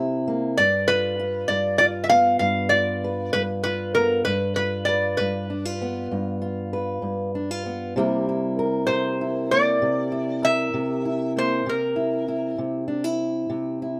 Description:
acoustic country blues, solo or duo; 65 BPM (dotted quarters); 12/8; straight; G mixolydian; A4 = 440 Hz
fingerpicked old ladder-braced acoustic guitar; accompaniment; 0.0-14.0 s; G2 to B4; -27 LUFS; equal
metal-body resonator slide guitar; melody; 0.6-12.6 s; Bb4 to F5; -24 LUFS; equal
moderate studio reverb, RT60 0.6 s; -23 LUFS; mono
0.0-14.0 A section
0.0 C7; 0.6 G7; 8.0 C7
| 0.57 1.50 2.42 3.34 | 4.27 5.19 6.11 7.04 | 7.96 8.89 9.81 10.74 | 11.66 12.59 13.51

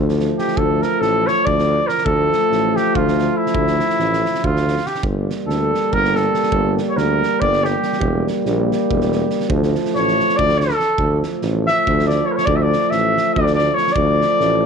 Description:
balkan folk, Balkan brass band; 282 BPM (eighths); 7/8; straight; D harmonic minor; A4 = 440 Hz
mellow euphonium; accompaniment; 0.0-14.7 s; A3 to Bb3; -24 LUFS; left 18 dB
warm trombone; accompaniment; 0.0-14.7 s; F3 to G3; -23 LUFS; right 15 dB
warm tuba; bass; 0.0-14.6 s; E1 to D2; -20 LUFS; equal
loose indie drum kit; percussion; 0.1-14.5 s; kick drum, snare drum; -27 LUFS; right 2 dB
mellow trumpet; melody; 0.4-14.7 s; E4 to E5; -18 LUFS; equal
light reverb, small room ambience; 1960s-style stereo with parts hard left and right; -15 LUFS; side -6 dB against mid
0.0-14.7 A section
trumpet solo 0.0-14.7
0.0 Dm; 5.0 Gm; 8.0 Edim; 9.5 Dm
0.14 0.35 | 0.56 0.78 0.99 1.20 1.41 1.63 1.84 | 2.05 2.27 2.48 2.69 2.90 3.12 3.33 | 3.54 3.75 3.97 4.18 4.39 4.61 4.82 | 5.03 5.24 5.46 5.67 5.88 6.09 6.31 | 6.52 6.73 6.95 7.16 7.37 7.58 7.80 | 8.01 8.22 8.43 8.65 8.86 9.07 9.28 | 9.50 9.71 9.92 10.13 10.35 10.56 10.77 | 10.98 11.20 11.41 11.62 11.83 12.04 12.26 | 12.47 12.68 12.89 13.11 13.32 13.53 13.74 | 13.95 14.17 14.38 14.59

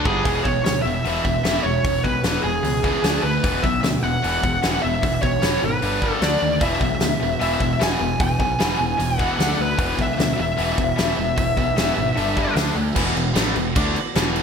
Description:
hard rock; 151 BPM; 4/4; straight; A4 = 440 Hz
mellow tonewheel organ; sustained chords; 0.0-0.3, 6.6-14.4 s; E3 to F#5; -34 LUFS; equal
scooped high-gain guitar; riff; 0.0-14.4 s; E2 to D4; -26 LUFS; right 10 dB; distortion
tight distorted guitar; riff; 0.0-14.4 s; E2 to D4; -26 LUFS; left 10 dB; distortion
fuzz picked electric bass; bass; 0.0-14.4 s; E1 to D#2; -26 LUFS; equal; overdrive
high-gain lead guitar; melody; 0.1-12.5 s; G#4 to G#5; -23 LUFS; equal; distortion
huge arena drum kit; drums; 0.1-14.4 s; crash cymbal, hi-hat, kick drum, snare drum; -24 LUFS; equal; gated reverb
moderate lush hall reverb, RT60 1.5 s, small room ambience; bright 1980s-style digital production; -18 LUFS; side -6 dB against mid
0.3-13.0 A section; 13.0-14.4 B section
drum fill 0.0
0.3 E; 3.0 D5; 3.4 E5; 5.8 G5; 6.2 D5; 6.6 E; 9.4 D5; 9.8 E5; 12.2 G5; 12.6 D5; 13.0 E5
| 0.26 0.66 1.05 1.45 | 1.85 2.25 2.64 3.04 | 3.44 3.84 4.23 4.63 | 5.03 5.42 5.82 6.22 | 6.62 7.01 7.41 7.81 | 8.21 8.60 9.00 9.40 | 9.79 10.19 10.59 10.98 | 11.38 11.78 12.18 12.57 | 12.97 13.37 13.76 14.16

